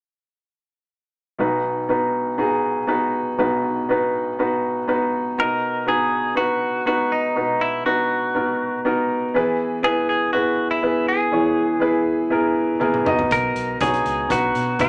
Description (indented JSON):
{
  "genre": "piano-driven pop",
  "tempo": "121 BPM",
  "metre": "4/4",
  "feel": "straight",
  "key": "B major",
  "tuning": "A4 = 441 Hz",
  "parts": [
    { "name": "clear baby grand piano", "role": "accompaniment", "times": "1.4-14.9 s", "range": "B1 to D#5", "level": "-22 LUFS", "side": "equal", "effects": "none" },
    { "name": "direct-recorded clean electric guitar", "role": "melody", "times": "5.4-14.9 s", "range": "D#4 to A#4", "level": "-24 LUFS", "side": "equal", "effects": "none" },
    { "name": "loose indie drum kit", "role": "drums", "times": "12.8-14.9 s", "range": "hi-hat, kick drum, toms", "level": "-33 LUFS", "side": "equal", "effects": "none" },
    { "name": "vintage muted fingered electric bass", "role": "bass", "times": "13.3-14.9 s", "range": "B1 to B2", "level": "-34 LUFS", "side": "equal", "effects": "none" }
  ],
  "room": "wet club ambience, RT60 0.5 s",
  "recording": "none",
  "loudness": "-21 LUFS",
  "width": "mono",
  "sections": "1.4-5.4 A section; 5.4-14.9 B section",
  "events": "drum fill 12.8-13.3",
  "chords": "1.4 B; 9.3 E; 13.1 B",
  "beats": "| 1.40 1.89 2.39 2.88 | 3.38 3.88 4.38 4.87 | 5.37 5.86 6.36 6.86 | 7.35 7.85 8.35 8.84 | 9.34 9.83 10.33 10.83 | 11.32 11.82 12.31 12.81 | 13.31 13.80 14.30 14.80"
}